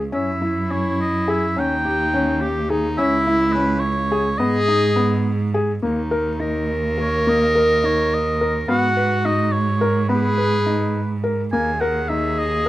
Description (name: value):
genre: contemporary instrumental, chamber music in an uneven meter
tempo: 211 BPM (eighths)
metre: 5/8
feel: straight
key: unclear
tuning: A4 = 440 Hz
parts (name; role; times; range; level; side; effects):
- bright cello; bass; 0.0-12.7 s; C#2 to G#2; -23 LUFS; right 3 dB; none
- warm oboe; melody; 0.1-12.7 s; B4 to G#5; -23 LUFS; equal; none
- bright clarinet; second line; 0.1-12.7 s; D#4 to A#4; -22 LUFS; left 1 dB; none
- felt-muted upright piano; arpeggios; 0.1-12.7 s; A#3 to B4; -23 LUFS; left 2 dB; none
room: little or no reverb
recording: close, detailed microphones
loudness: -17 LUFS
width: side -15 dB against mid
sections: 0.0-5.8 A section; 5.8-12.7 B section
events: none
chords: 0.1 F#5; 1.6 D#7; 3.0 C#m; 4.4 G#m; 5.8 D#5; 8.7 G#m7; 11.5 D#sus4